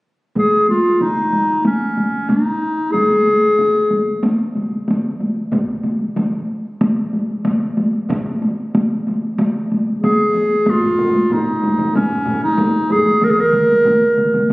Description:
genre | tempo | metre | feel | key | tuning
japanese traditional, taiko drum ensemble | 93 BPM | 4/4 | straight | Eb suspended pentatonic | A4 = 444 Hz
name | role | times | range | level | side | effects
warm clarinet | melody | 0.4-4.2, 10.0-14.5 s | Db4 to Bb4 | -14 LUFS | equal | none
taiko ensemble | percussion | 0.4-14.5 s | none | -18 LUFS | equal | none
taiko ensemble | percussion | 0.4-14.0 s | none | -32 LUFS | equal | none
taiko ensemble | percussion | 10.7-13.0 s | none | -27 LUFS | left 1 dB | none
taiko ensemble | percussion | 13.2-14.5 s | none | -26 LUFS | right 1 dB | none
room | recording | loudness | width
moderate scoring stage reverb, RT60 2.0 s | recorded on a phone in the room, studio reverb, compression | -14 LUFS | side -21 dB against mid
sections
0.4-10.7 A section; 10.7-14.5 B section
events
none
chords
none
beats
| 0.36 1.01 1.65 2.30 | 2.94 3.59 4.23 4.88 | 5.52 6.16 6.81 7.45 | 8.09 8.73 9.38 10.02 | 10.66 11.30 11.94 12.58 | 13.22 13.86 14.50

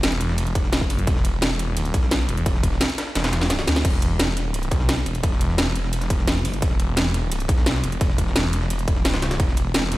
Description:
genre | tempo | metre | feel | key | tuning
dark technical drum and bass | 173 BPM | 4/4 | straight | unclear | A4 = 443 Hz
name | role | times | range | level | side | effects
snarling distorted saw bass | bass | 0.0-10.0 s | E1 to D2 | -23 LUFS | equal | distortion, overdrive, sidechain pumping
breakbeat sampler-style drum kit | drums | 0.0-10.0 s | hi-hat, ride cymbal, snare drum | -31 LUFS | equal | high-pass filter on cymbals, high-pass filter on snare, high-pass filter on hats
drum and bass drum kit | drums | 0.0-10.0 s | crash cymbal, hi-hat, snare drum | -24 LUFS | equal | overdrive
electronic kick drum | drums | 0.6-9.5 s | none | -22 LUFS | equal | overdrive
room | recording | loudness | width
light reverb | played on a big sound system in a bare room, stone room reverb | -19 LUFS | side -17 dB against mid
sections
0.0-3.8 A section; 3.8-10.0 A section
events
drop 0.0-3.8, 3.8-10.0; kick drops out 3.2-3.8; drum fill 3.2-3.8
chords
none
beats
0.03 0.38 0.73 | 1.07 1.42 1.77 2.11 | 2.46 2.81 3.15 3.50 | 3.85 4.20 4.54 4.89 | 5.24 5.58 5.93 6.28 | 6.62 6.97 7.32 7.66 | 8.01 8.36 8.70 9.05 | 9.40 9.74

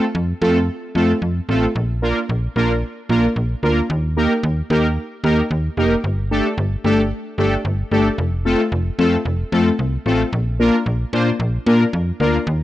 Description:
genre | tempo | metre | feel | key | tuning
synth-pop | 112 BPM | 4/4 | straight | Bb major | A4 = 440 Hz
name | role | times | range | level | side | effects
analog synth brass | accompaniment | 0.0-12.4 s | A3 to C5 | -18 LUFS | equal | chorus
slap-like FM bass | bass | 0.1-12.6 s | F1 to Bb2 | -20 LUFS | equal | none
room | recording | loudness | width
light reverb | dry, gritty hardware recording | -16 LUFS | side -14 dB against mid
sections
0.0-8.2 A section; 8.2-12.6 B section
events
none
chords
0.0 F; 1.8 Bb; 3.9 Eb; 6.0 Gsus2; 8.2 F; 10.3 Bb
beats
0.15 0.68 1.22 | 1.75 2.29 2.83 3.36 | 3.90 4.43 4.97 5.50 | 6.04 6.58 7.11 7.65 | 8.18 8.72 9.26 9.79 | 10.33 10.86 11.40 11.93 | 12.47

